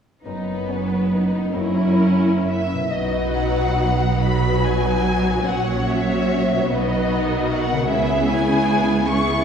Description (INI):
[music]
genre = classical, slow romantic movement for symphony orchestra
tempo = 41-50 BPM (dotted quarters)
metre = 6/8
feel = rubato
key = B major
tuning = A4 = 441 Hz
[part]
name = warm symphonic violin section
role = melody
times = 0.2-9.4 s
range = A#4 to C#6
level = -25 LUFS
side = left 2 dB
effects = none
[part]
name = warm symphonic violin section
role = second line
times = 0.2-9.4 s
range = C#4 to C#5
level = -24 LUFS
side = left 2 dB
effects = none
[part]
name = rich studio viola section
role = accompaniment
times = 0.2-9.4 s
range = F#3 to D#4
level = -25 LUFS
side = right 2 dB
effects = none
[part]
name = rich symphonic double bass section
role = bass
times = 0.2-9.4 s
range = F#1 to C#2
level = -24 LUFS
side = right 2 dB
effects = none
[part]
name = warm chamber cello section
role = bass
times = 0.2-9.4 s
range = F#2 to C#3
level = -26 LUFS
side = right 4 dB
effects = none
[part]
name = concert harp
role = arpeggios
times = 0.3-9.4 s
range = F#2 to F#4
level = -26 LUFS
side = left 4 dB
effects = none
[sound]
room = wet scoring stage reverb, RT60 1.8 s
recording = heard from further back in the room, small room reverb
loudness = -17 LUFS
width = side -7 dB against mid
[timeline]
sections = 0.3-2.9 A section; 2.9-9.4 B section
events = none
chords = 0.3 B/F#; 1.5 F#7; 2.9 B; 5.5 F#7/A#; 6.7 B; 7.9 C#m7